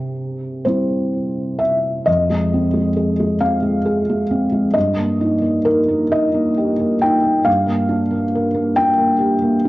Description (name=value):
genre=neoclassical minimalist piano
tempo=39-46 BPM (dotted quarters)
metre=6/8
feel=rubato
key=F dorian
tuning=A4 = 440 Hz
part: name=felt-muted upright piano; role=solo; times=0.0-9.7 s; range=F2 to G5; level=-15 LUFS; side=equal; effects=cassette tape
room=wet spring reverb, RT60 1.4 s, small room ambience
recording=home recording on cassette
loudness=-15 LUFS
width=side -18 dB against mid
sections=0.0-2.1 A section; 2.1-9.7 B section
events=none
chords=0.0 C; 2.1 Fm; 4.7 Eb/G; 7.5 Gm